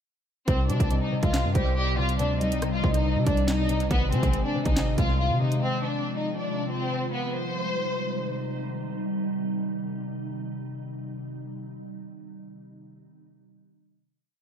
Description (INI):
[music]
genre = hip hop, drill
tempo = 140 BPM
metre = 4/4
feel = half-time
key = C minor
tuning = A4 = 436 Hz
[part]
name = warm studio violin section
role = melody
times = 0.5-8.6 s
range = G3 to F5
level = -29 LUFS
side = left 1 dB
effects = low-pass filter, dub echo
[part]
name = concert harp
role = accompaniment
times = 0.5-5.7 s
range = C3 to Ab3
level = -30 LUFS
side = left 4 dB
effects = low-pass filter
[part]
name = glassy FM pad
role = sustained chords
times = 0.7-11.5 s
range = C3 to F4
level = -32 LUFS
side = right 1 dB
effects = ensemble chorus, built-in reverb
[part]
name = distorted 808-style bass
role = bass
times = 0.5-5.6 s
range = Ab1 to C3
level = -27 LUFS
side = equal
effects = distortion
[part]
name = drill drum kit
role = drums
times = 0.5-5.6 s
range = handclaps, hi-hat, kick drum, rim click, snare drum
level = -27 LUFS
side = equal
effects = none
[part]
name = hollow clarinet-like synth lead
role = second line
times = 0.9-3.5 s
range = C5 to Eb5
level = -35 LUFS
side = right 6 dB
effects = chorus, dub echo
[sound]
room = light reverb, digital ambience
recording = echo-heavy mix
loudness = -24 LUFS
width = side -8 dB against mid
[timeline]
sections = 0.5-7.3 hook; 7.3-10.8 final chord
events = none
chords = 0.5 Cm; 3.9 Ab; 5.6 Fm; 7.3 Cm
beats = | 0.48 0.91 1.34 1.76 | 2.19 2.62 3.05 3.48 | 3.91 4.34 4.76 5.19 | 5.62 6.05 6.48 6.91 | 7.34 7.76 8.19 8.62 | 9.05 9.48 9.91 10.34